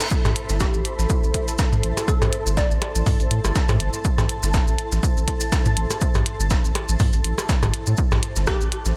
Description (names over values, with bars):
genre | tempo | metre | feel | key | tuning
minimal techno | 122 BPM | 4/4 | swing 56% on 16ths | A minor | A4 = 440 Hz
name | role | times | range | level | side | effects
breakbeat sampler-style drum kit | drums | 0.0-9.0 s | hi-hat, shaker, snare drum | -34 LUFS | equal | high-pass filter on snare, high-pass filter on perc, high-pass filter on hats
maracas | percussion | 0.0-8.9 s | none | -34 LUFS | equal | none
granular cloud pad | texture | 0.0-9.0 s | E4 to C6 | -32 LUFS | equal | built-in reverb, ensemble chorus, sidechain pumping
electronic kick drum | drums | 0.1-8.6 s | none | -25 LUFS | equal | none
saturated sub bass | bass | 0.2-8.9 s | G1 to A2 | -25 LUFS | equal | sidechain pumping
electronic toms and percussion blips | percussion | 0.3-8.2 s | none | -28 LUFS | equal | analog delay
minimal click drum kit | drums | 0.4-8.8 s | hi-hat, rim click | -29 LUFS | equal | none
glassy wavetable pluck | melody | 0.6-3.1, 8.5-8.7 s | G4 to D5 | -33 LUFS | equal | chorus, cassette tape, analog delay
room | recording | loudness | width
light reverb | none | -21 LUFS | mono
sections
0.0-9.0 A section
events
none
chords
0.0 Am